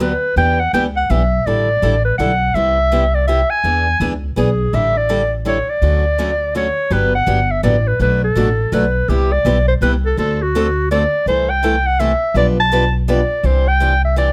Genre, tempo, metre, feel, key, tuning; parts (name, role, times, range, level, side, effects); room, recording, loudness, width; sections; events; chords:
acoustic string swing (jazz manouche); 165 BPM; 3/4; swing 62% on 8ths; D major, G major from 6.9 s; A4 = 440 Hz
warm clarinet; melody; 0.0-14.3 s; F#4 to A5; -19 LUFS; equal
picked acoustic archtop guitar; accompaniment; 0.0-14.3 s; B2 to B4; -23 LUFS; equal
upright bass; bass; 0.0-14.3 s; G1 to E2; -20 LUFS; equal
light reverb; close, detailed microphones; -16 LUFS; mono
0.0-6.9 A section; 6.9-14.3 B section
0.4 Em7; 1.5 A7sus4; 2.6 Cmaj7; 3.6 E7; 4.7 A7sus4; 5.8 Dmaj7; 6.9 Gmaj7; 8.0 Bm7; 9.1 Cmaj7; 10.2 D7; 11.3 C6; 12.4 G7/B; 13.4 Cadd9